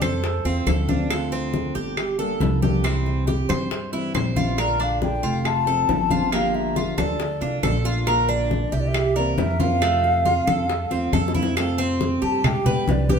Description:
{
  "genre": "latin, Cuban son and guajira",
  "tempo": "138 BPM",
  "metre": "4/4",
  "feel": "straight",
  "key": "F major",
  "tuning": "A4 = 441 Hz",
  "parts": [
    { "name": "mellow hollow concert flute", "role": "melody", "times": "0.0-0.8, 4.6-13.2 s", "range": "Bb4 to A5", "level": "-25 LUFS", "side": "left 2 dB", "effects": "none" },
    { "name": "nylon-string guitar", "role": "accompaniment", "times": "0.0-13.2 s", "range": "C3 to A4", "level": "-28 LUFS", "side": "equal", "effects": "none" },
    { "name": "Cuban tres", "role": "arpeggios", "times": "0.0-13.2 s", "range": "A3 to C5", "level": "-27 LUFS", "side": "right 3 dB", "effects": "none" },
    { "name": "upright bass", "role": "bass", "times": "0.0-13.2 s", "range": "F1 to G2", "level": "-25 LUFS", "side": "right 1 dB", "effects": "none" },
    { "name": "claves", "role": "percussion", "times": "0.0-12.7 s", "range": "none", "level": "-32 LUFS", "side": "right 2 dB", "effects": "none" },
    { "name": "congas", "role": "percussion", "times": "0.0-13.2 s", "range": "none", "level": "-26 LUFS", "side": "left 3 dB", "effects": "none" },
    { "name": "bongos", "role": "percussion", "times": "0.2-13.2 s", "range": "none", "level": "-31 LUFS", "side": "left 5 dB", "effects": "none" }
  ],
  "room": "wet studio reverb, RT60 0.9 s",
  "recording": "band playing live in one room",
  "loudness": "-19 LUFS",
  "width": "side -6 dB against mid",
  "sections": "0.0-11.6 A section; 11.6-13.2 B section",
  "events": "drum fill 11.1-11.6; flute solo 11.6-13.2",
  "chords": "0.2 Fmaj7; 1.1 Dm7; 2.0 Gmadd9; 2.8 C; 4.6 Bbmaj7; 5.5 F; 6.3 Gm7; 7.2 Dm; 8.1 Bb; 8.9 C7; 9.8 F; 12.4 G",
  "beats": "0.23 0.67 | 1.10 1.54 1.97 2.41 | 2.84 3.27 3.71 4.14 | 4.58 5.02 5.45 5.89 | 6.32 6.76 7.20 7.63 | 8.07 8.51 8.94 9.38 | 9.82 10.25 10.69 11.13 | 11.56 12.00 12.44 12.88"
}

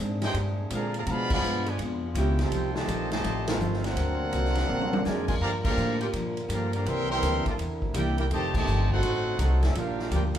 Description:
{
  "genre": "jazz, big band swing",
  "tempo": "166 BPM",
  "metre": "4/4",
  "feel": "swing 64% on 8ths",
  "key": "F major",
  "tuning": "A4 = 438 Hz",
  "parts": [
    { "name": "picked steel-string acoustic guitar", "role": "accompaniment", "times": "0.0-10.4 s", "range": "G2 to G4", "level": "-34 LUFS", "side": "left 2 dB", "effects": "none" },
    { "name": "warm trombone section", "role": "sustained chords", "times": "0.0-10.4 s", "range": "C3 to A#4", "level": "-37 LUFS", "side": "equal", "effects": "none" },
    { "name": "upright bass", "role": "bass", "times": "0.0-10.4 s", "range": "F1 to B2", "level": "-29 LUFS", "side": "equal", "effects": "none" },
    { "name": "clear trumpet section", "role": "melody", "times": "0.2-10.4 s", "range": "C4 to C6", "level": "-32 LUFS", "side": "equal", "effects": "none" },
    { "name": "bright trombone section", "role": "second line", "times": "0.2-10.4 s", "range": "C3 to G4", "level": "-32 LUFS", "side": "right 3 dB", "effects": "none" },
    { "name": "swinging big-band drum kit", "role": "drums", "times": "0.2-10.4 s", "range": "crash cymbal, hi-hat, kick drum, ride cymbal, snare drum, toms", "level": "-33 LUFS", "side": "equal", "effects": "none" }
  ],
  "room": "moderate large studio reverb, RT60 0.8 s",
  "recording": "band playing live in one room",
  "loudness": "-24 LUFS",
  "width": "side -10 dB against mid",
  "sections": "0.0-10.4 A section",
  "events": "band accent 1.2, 3.4, 5.6, 8.5; drum fill 4.7-5.0",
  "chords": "0.0 Bb9; 1.1 Bdim7; 2.5 F9; 4.0 D7alt; 5.4 Gm7; 6.9 C9; 8.3 F9; 9.0 D7b9; 9.8 Gm7",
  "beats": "0.35 0.71 | 1.07 1.43 1.79 2.15 | 2.52 2.88 3.24 3.60 | 3.96 4.33 4.69 5.05 | 5.41 5.77 6.13 6.50 | 6.86 7.22 7.58 7.94 | 8.30 8.67 9.03 9.39 | 9.75 10.11"
}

